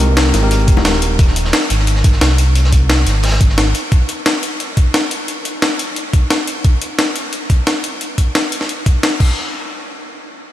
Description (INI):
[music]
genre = liquid drum and bass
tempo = 176 BPM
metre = 4/4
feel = straight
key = Ab major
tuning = A4 = 437 Hz
[part]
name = tine electric piano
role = accompaniment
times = 0.0-1.2 s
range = Ab3 to Bb4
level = -22 LUFS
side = equal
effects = ping-pong delay
[part]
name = sub bass with octave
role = bass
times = 0.0-3.7 s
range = Eb1 to C2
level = -14 LUFS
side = equal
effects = none
[part]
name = breakbeat sampler-style drum kit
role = drums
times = 0.0-9.3 s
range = crash cymbal, hi-hat, snare drum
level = -17 LUFS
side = left 1 dB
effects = studio reverb
[part]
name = crunchy breakbeat drum kit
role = drums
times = 0.2-3.8 s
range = hi-hat, snare drum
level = -25 LUFS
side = right 1 dB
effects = high-pass filter on hats, studio reverb, high-pass filter on snare, high-pass filter on room
[part]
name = bongos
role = percussion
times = 0.3-0.8 s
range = none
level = -26 LUFS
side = left 5 dB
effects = none
[part]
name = electronic kick drum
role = drums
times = 0.7-9.3 s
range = none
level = -11 LUFS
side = equal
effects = studio reverb
[sound]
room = light reverb, studio ambience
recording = none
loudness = -12 LUFS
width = side -13 dB against mid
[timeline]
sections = 0.0-9.4 A section; 9.4-10.5 B section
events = none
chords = 0.0 Abmaj9; 3.7 N.C.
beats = 0.17 0.51 0.85 | 1.19 1.53 1.87 2.21 | 2.56 2.90 3.24 3.58 | 3.92 4.26 4.60 4.94 | 5.28 5.62 5.96 6.30 | 6.65 6.99 7.33 7.67 | 8.01 8.35 8.69 9.03